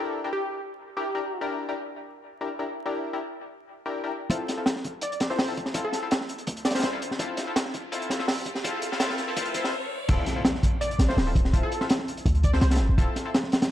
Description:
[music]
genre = drum and bass, jungle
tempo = 166 BPM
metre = 4/4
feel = straight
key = D minor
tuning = A4 = 440 Hz
[part]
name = band-passed chord stab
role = stabs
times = 0.0-13.3 s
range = C4 to Bb4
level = -32 LUFS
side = left 2 dB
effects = chorus, dub echo
[part]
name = plucky unison lead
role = melody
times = 0.3-1.5, 5.0-6.9, 10.8-12.7 s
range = G4 to D5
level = -33 LUFS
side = equal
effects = dub echo
[part]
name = warm 808-style bass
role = bass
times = 4.3-13.1 s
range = D1 to D2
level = -24 LUFS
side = equal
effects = high-pass filter
[part]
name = crunchy breakbeat drum kit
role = drums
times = 4.3-13.7 s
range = crash cymbal, hi-hat, kick drum, snare drum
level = -25 LUFS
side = equal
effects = high-pass filter on kick, high-pass filter on hats, high-pass filter on cymbals, high-pass filter on snare, high-pass filter on room
[part]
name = riser and impact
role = sound effects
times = 6.0-11.5 s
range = none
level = -37 LUFS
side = equal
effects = none
[sound]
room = moderate digital room reverb, RT60 1.1 s, studio ambience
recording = dark, warm production, vinyl crackle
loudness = -24 LUFS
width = side -12 dB against mid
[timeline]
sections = 0.0-4.3 A section; 4.3-10.1 B section; 10.1-13.7 C section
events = build-up 4.3-10.1; riser 6.0-10.1; stop 9.7-10.1; drop 10.1-13.7; impact 10.1-11.5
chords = 0.0 Em7b5; 4.3 Dm7

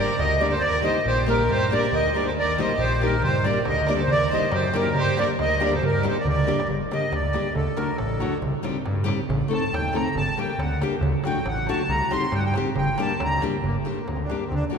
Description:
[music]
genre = balkan folk, Balkan wedding band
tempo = 138 BPM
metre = 2/4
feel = straight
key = G harmonic minor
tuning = A4 = 442 Hz
[part]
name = accordion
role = melody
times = 0.0-14.7 s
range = A3 to C6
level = -25 LUFS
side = right 1 dB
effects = light tremolo tuning
[part]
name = rich violin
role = second line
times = 0.0-6.7 s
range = G4 to C5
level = -31 LUFS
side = right 2 dB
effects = none
[part]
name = nylon-string guitar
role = accompaniment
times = 0.0-14.8 s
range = F#3 to A4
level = -28 LUFS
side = left 4 dB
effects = none
[part]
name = fat analog bass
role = bass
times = 0.2-14.6 s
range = G1 to G2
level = -27 LUFS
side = equal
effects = none
[part]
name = darbuka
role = percussion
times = 3.2-14.8 s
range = none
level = -30 LUFS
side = right 2 dB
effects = none
[sound]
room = wet cathedral reverb, RT60 6.1 s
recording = recorded in a church or concert hall, lossy compression artefacts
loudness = -21 LUFS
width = side -6 dB against mid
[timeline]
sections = 0.0-6.7 A section; 6.7-13.6 B section; 13.6-14.8 C section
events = drum fill 6.3-6.7; accordion solo 6.7-13.6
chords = 0.0 Gm; 0.6 Eb; 1.5 Gm; 2.4 Eb; 3.2 Gm; 4.1 Eb; 5.0 Gm; 7.6 D; 8.4 Cm; 9.3 Adim; 10.2 Gm; 11.0 D; 11.9 Cm; 12.8 Gm

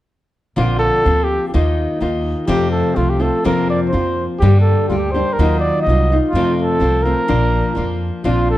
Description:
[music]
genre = mexican folk, mariachi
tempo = 125 BPM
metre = 2/4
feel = straight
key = Bb major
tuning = A4 = 441 Hz
[part]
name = mellow trumpet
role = melody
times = 0.6-8.6 s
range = F4 to Eb5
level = -19 LUFS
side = right 1 dB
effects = none
[part]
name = nylon-string guitar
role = accompaniment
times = 0.6-8.6 s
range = F2 to G4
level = -18 LUFS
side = left 2 dB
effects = none
[part]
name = upright bass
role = bass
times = 0.6-8.6 s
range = Bb1 to G2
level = -18 LUFS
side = equal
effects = none
[sound]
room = moderate recital hall reverb, RT60 1.6 s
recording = dark, warm production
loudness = -14 LUFS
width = side -14 dB against mid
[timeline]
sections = 0.6-8.2 A section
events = none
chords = 0.6 Bbadd9; 1.5 Ebsus2; 2.5 F; 3.5 Bbsus2/F; 4.4 Gm; 5.4 Ebmadd9; 6.3 F; 7.3 Bb

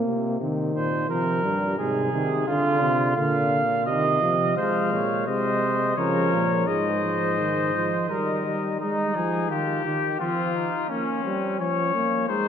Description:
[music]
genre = classical, imitative canzona for brass ensemble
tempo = 86 BPM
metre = 3/4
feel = straight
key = C minor, Ab major from 4.6 s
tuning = A4 = 436 Hz
[part]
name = mellow trombone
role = accompaniment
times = 0.0-12.5 s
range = C3 to Bb3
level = -27 LUFS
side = right 1 dB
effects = none
[part]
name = clear bass trombone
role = bass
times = 0.0-8.8 s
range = G2 to F3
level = -28 LUFS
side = right 1 dB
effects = none
[part]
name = clear flugelhorn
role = second line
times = 0.8-12.5 s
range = C4 to F5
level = -26 LUFS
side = right 2 dB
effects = none
[part]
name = warm trumpet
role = melody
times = 4.6-12.5 s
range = Db4 to F5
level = -27 LUFS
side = left 7 dB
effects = none
[sound]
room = wet church reverb, RT60 3.3 s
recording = none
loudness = -21 LUFS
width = side -8 dB against mid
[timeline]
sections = 0.0-4.6 A section; 4.6-8.8 B section; 8.8-12.5 C section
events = none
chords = 0.4 Cm; 1.8 Ab; 2.5 Bbadd9; 3.9 Cm; 4.6 Fm; 6.0 Bbm/Db; 6.7 Ebsus4/Ab; 8.1 Eb; 8.8 Ab5; 10.2 F5; 10.9 Bbm

